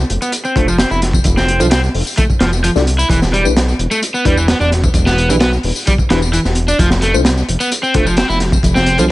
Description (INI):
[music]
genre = breakbeat, breaks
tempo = 130 BPM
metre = 4/4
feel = straight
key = unclear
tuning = A4 = 440 Hz
[part]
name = fat analog bass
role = bass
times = 0.0-9.1 s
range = E1 to C2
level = -16 LUFS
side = equal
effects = tube saturation
[part]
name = crunchy breakbeat drum kit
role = drums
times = 0.1-9.1 s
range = hi-hat, kick drum, snare drum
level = -16 LUFS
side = equal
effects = none
[part]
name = overdriven semi-hollow guitar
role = riff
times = 0.2-9.0 s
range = E3 to E4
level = -17 LUFS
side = equal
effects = vintage 12-bit sampler grit, low-pass filter, ping-pong delay
[part]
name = tambourine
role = drums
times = 0.2-9.1 s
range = none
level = -25 LUFS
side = left 4 dB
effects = none
[part]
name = mellow tine electric piano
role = stabs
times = 0.6-9.0 s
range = D4 to D5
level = -20 LUFS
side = left 2 dB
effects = medium stereo tremolo, vintage 12-bit sampler grit, low-pass filter, ping-pong delay
[sound]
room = little or no reverb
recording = nothing above 10.5 kHz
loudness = -11 LUFS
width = side -18 dB against mid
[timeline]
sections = 0.0-9.1 A section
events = none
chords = 0.0 F; 3.1 Em7; 6.8 F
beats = 0.33 0.80 | 1.26 1.72 2.18 2.64 | 3.10 3.56 4.03 4.49 | 4.95 5.41 5.87 6.33 | 6.79 7.26 7.72 8.18 | 8.64 9.10